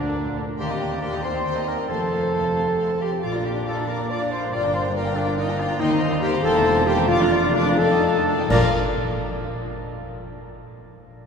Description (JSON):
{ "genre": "classical, dramatic, fast romantic movement for symphony orchestra", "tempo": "83-96 BPM (dotted quarters)", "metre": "6/8", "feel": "rubato", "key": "Bb major", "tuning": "A4 = 439 Hz", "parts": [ { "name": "warm symphonic violin section", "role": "melody", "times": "0.0-8.8 s", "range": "D4 to D6", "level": "-34 LUFS", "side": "left 2 dB", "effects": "none" }, { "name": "clear clarinet", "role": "second line", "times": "0.0-8.7 s", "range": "D4 to D5", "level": "-34 LUFS", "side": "left 2 dB", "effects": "none" }, { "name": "clear oboe", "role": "second line", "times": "0.0-8.7 s", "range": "D4 to D5", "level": "-32 LUFS", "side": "right 1 dB", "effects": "none" }, { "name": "mellow concert flute", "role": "second line", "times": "0.0-8.8 s", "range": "D5 to D6", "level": "-31 LUFS", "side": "equal", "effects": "none" }, { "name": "warm studio violin section", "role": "second line", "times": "0.0-8.8 s", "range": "D4 to G5", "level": "-34 LUFS", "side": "left 4 dB", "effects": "none" }, { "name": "mellow bassoon", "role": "accompaniment", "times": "0.0-8.7 s", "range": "D3 to Eb4", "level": "-32 LUFS", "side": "left 2 dB", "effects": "none" }, { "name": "rich symphonic viola section", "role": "accompaniment", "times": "0.0-8.8 s", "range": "D3 to F4", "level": "-33 LUFS", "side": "right 2 dB", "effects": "none" }, { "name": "dark trombone section", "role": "sustained chords", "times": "0.0-8.7 s", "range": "D2 to D4", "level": "-34 LUFS", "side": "right 4 dB", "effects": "none" }, { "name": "warm French horn section", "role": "sustained chords", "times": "0.0-8.7 s", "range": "D4 to D5", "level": "-24 LUFS", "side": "left 1 dB", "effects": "none" }, { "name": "concert harp", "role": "arpeggios", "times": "0.0-8.8 s", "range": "G2 to D6", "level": "-31 LUFS", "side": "left 4 dB", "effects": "none" }, { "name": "warm symphonic cello section", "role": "bass", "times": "0.0-8.8 s", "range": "D2 to Bb2", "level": "-30 LUFS", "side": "right 2 dB", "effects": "none" }, { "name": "warm symphonic double bass section", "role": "bass", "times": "0.0-8.8 s", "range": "E1 to Eb2", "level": "-31 LUFS", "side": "right 4 dB", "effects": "none" }, { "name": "cymbal swell, clash cymbals and concert bass drum", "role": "percussion", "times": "5.8-9.4 s", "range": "none", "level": "-34 LUFS", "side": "equal", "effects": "none" } ], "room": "wet cathedral reverb, RT60 5.8 s", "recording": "recorded in a church or concert hall", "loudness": "-19 LUFS", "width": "side -6 dB against mid", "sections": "0.0-8.5 A section; 8.5-9.9 B section", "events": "slowing down 5.2-8.5; band accent 8.5-9.0", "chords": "0.0 Gm7; 0.6 Cm7/Eb; 1.9 F; 3.2 Bb; 4.5 Gm7; 5.8 Cm7/Eb; 6.4 C7/E; 7.1 Bb/F; 7.8 F13; 8.5 Bb" }